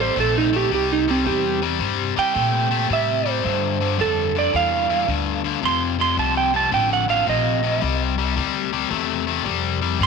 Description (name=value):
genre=electric blues shuffle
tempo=110 BPM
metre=4/4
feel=swing 67% on 8ths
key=C mixolydian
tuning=A4 = 437 Hz
part: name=electric slide guitar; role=melody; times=0.0-10.1 s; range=C4 to C6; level=-21 LUFS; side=right 8 dB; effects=none
part: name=cranked stack guitar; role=riff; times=0.0-10.1 s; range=F2 to A3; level=-23 LUFS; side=left 15 dB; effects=overdrive
part: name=upright bass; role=bass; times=0.0-10.1 s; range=A1 to Bb2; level=-26 LUFS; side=left 1 dB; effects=none
room=moderate echo chamber reverb, RT60 2.6 s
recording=1960s-style stereo with parts hard left and right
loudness=-18 LUFS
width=side -5 dB against mid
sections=0.0-10.1 A section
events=electric slide guitar solo 0.0-10.1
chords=0.0 C7; 3.4 G5; 5.6 F7; 7.8 C